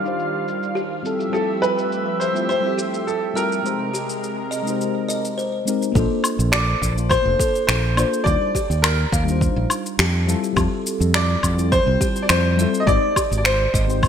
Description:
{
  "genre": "sunset chillout",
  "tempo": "104 BPM",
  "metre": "4/4",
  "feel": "straight",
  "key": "Bb major",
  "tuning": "A4 = 440 Hz",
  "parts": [
    { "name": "clear grand piano", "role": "melody", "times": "0.0-14.1 s", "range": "A4 to Eb5", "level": "-22 LUFS", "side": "equal", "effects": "lush chorus, ping-pong delay" },
    { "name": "mellow FM electric piano", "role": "accompaniment", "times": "0.0-14.1 s", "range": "G3 to C5", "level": "-25 LUFS", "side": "moving between left 7 dB and right 4 dB", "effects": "chorus, phaser, auto-pan, ping-pong delay" },
    { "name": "lush unison pad", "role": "sustained chords", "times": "0.0-5.9 s", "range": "C3 to F5", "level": "-26 LUFS", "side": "right 1 dB", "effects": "chorus" },
    { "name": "buzzing kalimba", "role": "arpeggios", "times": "0.0-13.9 s", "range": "G4 to F5", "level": "-29 LUFS", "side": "left 1 dB", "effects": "ping-pong delay" },
    { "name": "electronic shaker, woodblock and finger snaps", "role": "drums", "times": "0.1-14.1 s", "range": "none", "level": "-23 LUFS", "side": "left 1 dB", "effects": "overdrive, gated reverb" },
    { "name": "modern bright fingered electric bass", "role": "bass", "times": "6.0-14.1 s", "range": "F1 to F2", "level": "-20 LUFS", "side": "right 1 dB", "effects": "tube saturation" },
    { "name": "electronic kick drum", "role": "drums", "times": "6.0-14.1 s", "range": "none", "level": "-23 LUFS", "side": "right 1 dB", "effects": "overdrive" }
  ],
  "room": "moderate lush hall reverb, RT60 2.1 s",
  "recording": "bright 1980s-style digital production, low-pass filter",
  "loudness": "-18 LUFS",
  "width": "side -8 dB against mid",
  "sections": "0.0-5.9 A section; 5.9-14.1 B section",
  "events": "filter sweep 0.0-5.9",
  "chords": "0.0 Ebmaj9; 1.0 Fmaj9; 3.6 Abmaj9; 5.9 Bbmaj9; 8.3 Ebmaj9; 10.3 Fmaj9; 12.9 Abmaj7",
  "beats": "0.18 0.76 | 1.33 1.91 2.49 3.06 | 3.64 4.22 4.79 5.37 | 5.95 6.53 7.10 7.68 | 8.26 8.83 9.41 9.99 | 10.56 11.14 11.72 12.29 | 12.87 13.45 14.03"
}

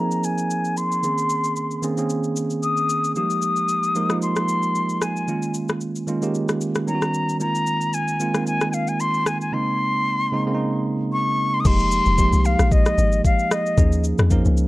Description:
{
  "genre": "amapiano",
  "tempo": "113 BPM",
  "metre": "4/4",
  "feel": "swing 55% on 16ths",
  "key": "F minor",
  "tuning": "A4 = 439 Hz",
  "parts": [
    { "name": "silver concert flute", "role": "melody", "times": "0.0-14.0 s", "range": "Eb5 to Eb6", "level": "-23 LUFS", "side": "left 2 dB", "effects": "low-pass filter, tape echo" },
    { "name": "bell-like tine electric piano", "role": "accompaniment", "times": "0.0-14.7 s", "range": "Db3 to Bb4", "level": "-23 LUFS", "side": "right 2 dB", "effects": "low-pass filter" },
    { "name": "smooth R&B drum kit", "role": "drums", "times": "0.1-14.7 s", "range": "crash cymbal, kick drum, rim click, shaker", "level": "-23 LUFS", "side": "left 1 dB", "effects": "vintage 12-bit sampler grit" },
    { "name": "deep log drum bass", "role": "bass", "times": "11.7-14.7 s", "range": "F1 to F2", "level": "-19 LUFS", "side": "left 1 dB", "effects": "none" }
  ],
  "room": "light reverb",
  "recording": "dark, warm production",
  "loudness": "-19 LUFS",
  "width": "side -18 dB against mid",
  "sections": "0.0-11.7 A section; 11.7-14.7 B section",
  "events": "filter sweep 0.0-11.7",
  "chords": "0.0 Ab69; 1.0 Bbm11; 3.2 Fm11; 5.3 Eb9sus4; 6.9 Eb7alt; 7.4 Ab69; 9.5 Bbm11; 11.7 Fm11; 13.8 Eb9sus4",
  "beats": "0.50 | 1.03 1.56 2.10 2.63 | 3.16 3.69 4.22 4.75 | 5.28 5.81 6.34 6.87 | 7.41 7.94 8.47 9.00 | 9.53 10.06 10.59 11.12 | 11.65 12.18 12.71 13.24 | 13.78 14.31"
}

